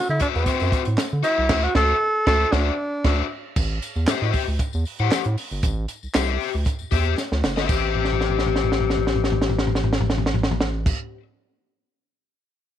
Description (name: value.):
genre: funk.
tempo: 116 BPM.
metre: 4/4.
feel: straight.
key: A dorian.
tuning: A4 = 435 Hz.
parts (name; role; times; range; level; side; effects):
breathy tenor saxophone; melody; 0.0-3.3 s; C4 to A4; -22 LUFS; right 1 dB; none.
round analog bass; bass; 0.1-10.9 s; F#1 to D3; -24 LUFS; right 1 dB; none.
tambourine; percussion; 0.1-10.9 s; none; -39 LUFS; left 13 dB; none.
overdriven electric guitar; accompaniment; 0.2-11.2 s; F#4 to F#5; -26 LUFS; left 15 dB; none.
compact cocktail drum kit; drums; 0.2-11.0 s; crash cymbal, handclaps, hi-hat, kick drum, snare drum, toms; -23 LUFS; right 1 dB; none.
room: studio reverb.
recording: 1960s-style stereo.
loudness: -19 LUFS.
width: side -10 dB against mid.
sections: 0.0-3.6 A section; 3.6-7.7 B section; 7.7-11.8 C section.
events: band accent 1.5-3.6; drum fill 7.2-7.7, 8.0-10.9.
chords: 0.0 D9; 3.6 Am7.